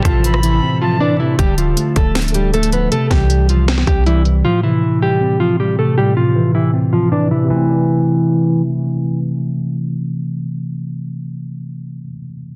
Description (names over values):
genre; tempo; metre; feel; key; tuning
hip hop, trap; 157 BPM; 4/4; half-time; A minor; A4 = 440 Hz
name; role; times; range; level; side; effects
nylon-string guitar; melody; 0.0-8.6 s; E3 to D5; -20 LUFS; equal; low-pass filter, tape echo
tine electric piano; accompaniment; 0.0-12.6 s; A2 to D4; -20 LUFS; equal; overdrive, low-pass filter
deep dark ambient pad; sustained chords; 0.0-1.4 s; A4 to A5; -35 LUFS; equal; chorus, built-in reverb
reedy silver concert flute; second line; 0.1-1.0 s; A5 to B5; -26 LUFS; equal; tape echo
clean 808-style bass; bass; 0.1-4.4 s; D1 to C2; -18 LUFS; equal; none
trap drum kit; drums; 0.1-4.3 s; hi-hat, kick drum, rim click, snare drum; -20 LUFS; equal; none
room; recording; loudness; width
light reverb; dense, heavily limited modern master, low-pass filter; -16 LUFS; mono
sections
0.0-1.4 A section; 1.4-7.5 B section; 7.5-10.6 C section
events
drums muted 0.6-1.4; filter sweep 1.4-7.5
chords
0.0 Am; 1.4 Dm; 2.9 C; 4.4 Am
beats
0.24 0.62 1.01 | 1.39 1.77 2.15 2.54 | 2.92 3.30 3.68 4.06 | 4.45 4.83 5.21 5.59 | 5.97 6.36 6.74 7.12 | 7.50 7.88 8.27 8.65 | 9.03 9.41 9.80 10.18